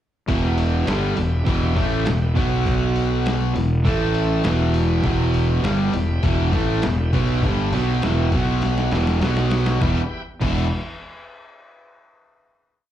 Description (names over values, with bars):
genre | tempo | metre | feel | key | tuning
classic rock | 101 BPM | 4/4 | straight | E minor | A4 = 441 Hz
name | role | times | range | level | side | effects
bright tonewheel organ | sustained chords | 0.3-10.2 s | E4 to G5 | -34 LUFS | equal | slow rotary speaker, overdrive, plate reverb
crunchy overdriven guitar | riff | 0.3-10.7 s | E2 to B3 | -23 LUFS | right 6 dB | slapback echo
overdriven electric guitar | riff | 0.3-10.7 s | E2 to E4 | -26 LUFS | left 10 dB | slapback echo
fuzz fingered electric bass | bass | 0.3-10.7 s | E1 to B1 | -21 LUFS | left 1 dB | overdrive
lo-fi sampler-style drum kit | drums | 0.3-10.6 s | crash cymbal, hi-hat, kick drum, snare drum | -25 LUFS | left 1 dB | none
room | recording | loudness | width
light reverb | live gig heard through the venue's PA, club reverb | -18 LUFS | side -11 dB against mid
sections
0.3-9.8 riff; 9.8-12.2 final chord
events
drum fill 8.6-9.8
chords
0.3 Em; 2.4 B5; 3.6 E5; 3.8 A5; 4.4 Em; 8.3 B5; 8.9 E5; 9.2 B5; 9.8 Em